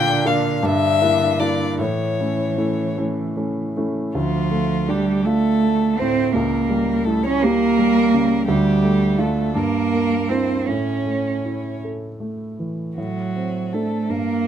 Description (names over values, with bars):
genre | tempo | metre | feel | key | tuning
classical, slow romantic movement for piano trio | 50-57 BPM (dotted quarters) | 6/8 | rubato | D minor | A4 = 440 Hz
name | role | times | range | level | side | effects
warm violin | melody | 0.0-14.5 s | F4 to G5 | -25 LUFS | left 7 dB | none
dark cello | second line | 0.0-14.5 s | D3 to C#4 | -20 LUFS | right 4 dB | none
dark grand piano | accompaniment | 0.0-14.5 s | C#2 to A4 | -22 LUFS | equal | none
room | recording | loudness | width
light reverb | none | -18 LUFS | side -9 dB against mid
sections
0.0-4.1 A section; 4.1-14.5 B section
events
none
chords
0.0 Bb; 0.6 Em7b5/G; 1.8 A; 4.1 Dm; 6.3 C#dim7; 8.5 Dm; 9.6 Edim/G; 10.7 A; 13.0 D7/A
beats
0.63 | 1.78 2.97 | 4.14 5.25 | 6.35 7.42 | 8.47 9.55 | 10.67 11.82 | 12.97 14.10